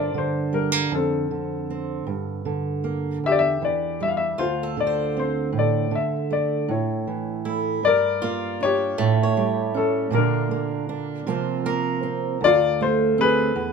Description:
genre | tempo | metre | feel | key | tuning
acoustic folk-pop ballad | 52 BPM (dotted quarters) | 6/8 | straight | D minor | A4 = 441 Hz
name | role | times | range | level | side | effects
warm upright piano | melody | 0.0-13.7 s | C4 to F5 | -22 LUFS | left 6 dB | none
fingerpicked steel-string acoustic guitar | accompaniment | 0.0-13.7 s | D2 to F4 | -24 LUFS | right 5 dB | none
picked swing-style acoustic guitar | arpeggios | 0.0-12.8 s | A3 to A5 | -29 LUFS | right 4 dB | none
room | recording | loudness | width
light reverb | minimal, uncompressed stereo recording | -20 LUFS | side -5 dB against mid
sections
0.0-7.8 A section; 7.8-13.7 B section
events
none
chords
0.0 Gm; 0.9 Dm7/F; 2.1 Gm; 3.2 Em7; 4.4 Dm7; 5.5 Asus4; 6.7 A; 7.8 Gm7; 9.0 A7; 10.1 Bbmaj7; 11.3 C7sus4; 12.4 Dm7

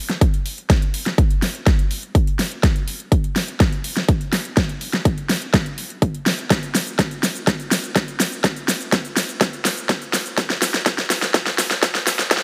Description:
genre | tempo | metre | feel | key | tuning
house | 124 BPM | 4/4 | straight | none | none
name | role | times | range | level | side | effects
big-room dance drum kit | drums | 0.1-12.4 s | hi-hat, shaker, snare drum | -23 LUFS | equal | overdrive
electronic kick drum | drums | 0.2-12.4 s | none | -20 LUFS | equal | overdrive
room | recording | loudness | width
light reverb | high-pass filter | -20 LUFS | mono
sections
0.0-12.4 A section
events
build-up 0.0-12.4; drum fill 0.0-12.4; filter sweep 0.0-12.4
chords
none

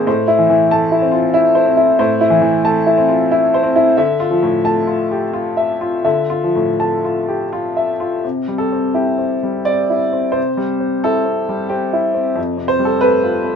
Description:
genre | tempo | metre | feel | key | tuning
neoclassical minimalist piano | 80-96 BPM | 3/4 | rubato | C major | A4 = 439 Hz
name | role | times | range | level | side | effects
warm upright piano | solo | 0.0-13.6 s | F2 to A5 | -13 LUFS | left 1 dB | none
room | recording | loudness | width
moderate studio reverb, RT60 0.7 s | minimal, uncompressed stereo recording | -13 LUFS | side -7 dB against mid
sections
0.0-8.2 A section; 8.2-13.6 B section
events
none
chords
0.1 Am; 4.0 Dmadd9; 8.2 C; 12.4 Fadd9

